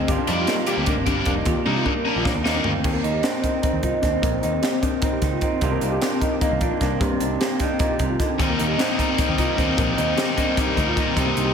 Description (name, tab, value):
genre	math rock and midwest emo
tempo	303 BPM (eighths)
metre	7/8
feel	straight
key	Eb major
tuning	A4 = 440 Hz
part	electric guitar through a small old amp	accompaniment	0.0-11.5 s	Eb2 to G4	-26 LUFS	right 6 dB	slapback echo
part	felt-muted upright piano	arpeggios	0.0-11.5 s	Bb3 to G4	-25 LUFS	left 5 dB	digital delay
part	overdriven picked electric bass	bass	0.0-11.5 s	F1 to C3	-27 LUFS	equal	none
part	crisp fusion drum kit	drums	0.1-11.5 s	crash cymbal, hi-hat, kick drum, snare drum, toms	-25 LUFS	equal	none
part	cranked stack guitar	riff	0.3-2.7, 8.4-11.5 s	Eb2 to G4	-24 LUFS	left 2 dB	overdrive
room	moderate lush hall reverb, RT60 2.0 s, small room ambience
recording	big arena sound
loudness	-19 LUFS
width	side -7 dB against mid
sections	0.0-2.8 A section; 2.8-11.5 B section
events	drum fill 1.7-2.8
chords	0.1 Gm7; 1.5 Ebmaj9; 2.8 Eb5; 5.6 Cm11; 8.4 Cm9